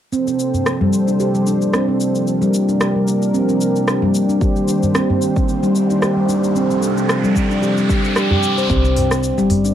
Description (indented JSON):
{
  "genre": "organic downtempo",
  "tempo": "112 BPM",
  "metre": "4/4",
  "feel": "swing 55% on 16ths",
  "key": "unclear",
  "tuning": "A4 = 440 Hz",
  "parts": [
    { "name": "warm analog pad", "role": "sustained chords", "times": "0.1-8.7 s", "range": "C3 to C5", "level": "-23 LUFS", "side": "equal", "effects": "chorus, sidechain pumping, cassette tape" },
    { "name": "handpan", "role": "arpeggios", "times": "0.1-9.7 s", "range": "G3 to C5", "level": "-16 LUFS", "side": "equal", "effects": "low-pass filter, cassette tape, tape echo" },
    { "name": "afro-pop drum kit", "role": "drums", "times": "0.1-9.7 s", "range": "hi-hat, rim click, shaker", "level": "-24 LUFS", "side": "left 1 dB", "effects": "studio reverb" },
    { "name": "udu", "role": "percussion", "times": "0.5-9.6 s", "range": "none", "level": "-22 LUFS", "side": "right 1 dB", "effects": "none" },
    { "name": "electronic kick drum", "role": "drums", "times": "4.4-8.8 s", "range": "none", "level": "-19 LUFS", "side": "equal", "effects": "studio reverb" },
    { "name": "riser", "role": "sound effects", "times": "5.5-8.7 s", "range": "none", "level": "-25 LUFS", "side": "right 1 dB", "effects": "none" },
    { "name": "upright bass", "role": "bass", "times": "8.7-9.7 s", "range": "G1 to C2", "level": "-20 LUFS", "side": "equal", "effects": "none" }
  ],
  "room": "moderate small room reverb, RT60 0.5 s",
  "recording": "home recording on cassette",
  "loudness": "-14 LUFS",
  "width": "side -10 dB against mid",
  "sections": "0.1-8.7 A section; 8.7-9.7 B section",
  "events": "filter sweep on handpan 0.1-8.7; riser 5.5-8.7",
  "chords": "0.1 Bbmaj9/C; 2.3 Gm7/C; 4.4 Cm9; 6.6 Dm7/C; 8.7 Gsus4"
}